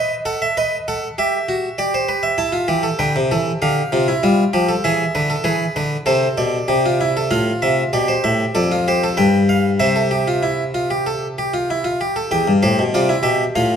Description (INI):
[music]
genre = classical, baroque-style 3-part fugue for harpsichord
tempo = 97 BPM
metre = 4/4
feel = straight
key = A minor, C major from 7.3 s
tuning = A4 = 443 Hz
[part]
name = harpsichord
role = solo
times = 0.0-13.7 s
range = E2 to A5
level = -16 LUFS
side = equal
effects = none
[sound]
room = wet recital hall reverb, RT60 1.5 s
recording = dark, warm production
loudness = -16 LUFS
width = side -8 dB against mid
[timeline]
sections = 0.0-7.3 A section; 7.3-12.3 B section; 12.3-13.8 C section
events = none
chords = 0.0 B7; 1.2 Em; 2.4 A5/E; 3.6 Dm; 4.8 E7; 6.1 Am; 7.3 F/A; 8.6 F; 9.2 G7; 9.8 C; 12.3 C/E